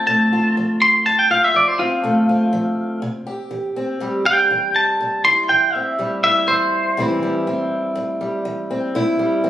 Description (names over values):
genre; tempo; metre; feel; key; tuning
country; 122 BPM; 4/4; straight; unclear; A4 = 441 Hz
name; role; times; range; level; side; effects
twangy electric guitar; melody; 0.0-7.0 s; F4 to C6; -15 LUFS; equal; tape echo
picked old ladder-braced acoustic guitar; accompaniment; 0.0-9.5 s; F2 to G4; -20 LUFS; equal; none
room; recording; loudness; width
wet large studio reverb, RT60 1.3 s; recorded on a phone in the room, studio reverb; -16 LUFS; side -12 dB against mid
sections
0.0-7.0 A section; 7.0-9.5 B section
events
clean electric guitar solo 0.0-7.0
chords
0.0 F; 3.0 C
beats
0.07 0.56 | 1.05 1.55 2.04 2.54 | 3.03 3.52 4.02 4.51 | 5.00 5.50 5.99 6.48 | 6.98 7.47 7.96 8.45 | 8.95 9.44